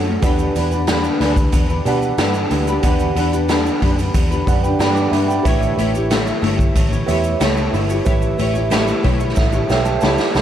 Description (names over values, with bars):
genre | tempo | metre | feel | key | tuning
indie pop, bedroom pop | 92 BPM | 4/4 | straight | E dorian | A4 = 440 Hz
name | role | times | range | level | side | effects
flamenco guitar | accompaniment | 0.0-10.4 s | E3 to C#5 | -20 LUFS | left 3 dB | analog chorus, warbly pitch drift, tape echo
mellow reed electric piano | accompaniment | 0.0-10.4 s | F#4 to D6 | -22 LUFS | right 7 dB | fast tremolo, cassette tape, tape echo
vintage muted picked electric bass | bass | 0.0-10.4 s | G1 to B2 | -21 LUFS | equal | none
raw garage drum kit | drums | 0.2-10.4 s | hi-hat, kick drum, snare drum | -19 LUFS | equal | tape echo
tube shaker | percussion | 0.2-10.4 s | none | -40 LUFS | right 7 dB | none
room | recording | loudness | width
moderate spring reverb, RT60 2.3 s | echo-heavy mix | -15 LUFS | side -10 dB against mid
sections
0.0-10.4 A section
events
reed electric piano fill 4.1-5.5, 8.7-10.4; drum fill 9.4-10.4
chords
0.2 Em7; 5.5 A7